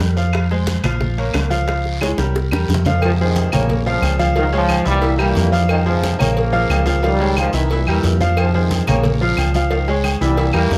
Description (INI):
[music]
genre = latin, salsa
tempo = 180 BPM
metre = 4/4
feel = straight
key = F minor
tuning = A4 = 439 Hz
[part]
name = bright grand piano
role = accompaniment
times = 0.0-10.8 s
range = E3 to F5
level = -23 LUFS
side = equal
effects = none
[part]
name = hollow-body short-scale fingered electric bass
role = bass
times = 0.0-10.8 s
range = Bb1 to F2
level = -21 LUFS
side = equal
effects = none
[part]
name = bongos and cowbell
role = percussion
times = 0.0-10.8 s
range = none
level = -29 LUFS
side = equal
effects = none
[part]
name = congas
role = percussion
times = 0.0-10.8 s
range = none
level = -28 LUFS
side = equal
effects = none
[part]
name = guiro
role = percussion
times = 0.0-10.8 s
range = none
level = -35 LUFS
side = equal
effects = none
[part]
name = timbales and agogo bells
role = percussion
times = 0.0-10.8 s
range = none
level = -31 LUFS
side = equal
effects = none
[part]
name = claves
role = percussion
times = 0.3-10.7 s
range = none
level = -30 LUFS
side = equal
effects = none
[part]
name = mellow trombone section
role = melody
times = 3.0-10.8 s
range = F2 to Bb3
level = -24 LUFS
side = equal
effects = slapback echo
[sound]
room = light reverb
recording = none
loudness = -17 LUFS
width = mono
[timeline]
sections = 0.0-3.0 A section; 3.0-10.8 B section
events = drum fill 2.0-3.0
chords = 0.3 Fm; 1.0 Bbm; 1.7 Db; 2.4 C7; 3.0 Fmadd9; 3.7 Bbm; 4.4 Db; 5.0 C7; 5.7 Fmadd9; 6.4 Bbm; 7.0 Dbadd9; 7.7 C7; 8.4 Fmadd9; 9.0 Bbm; 9.7 Db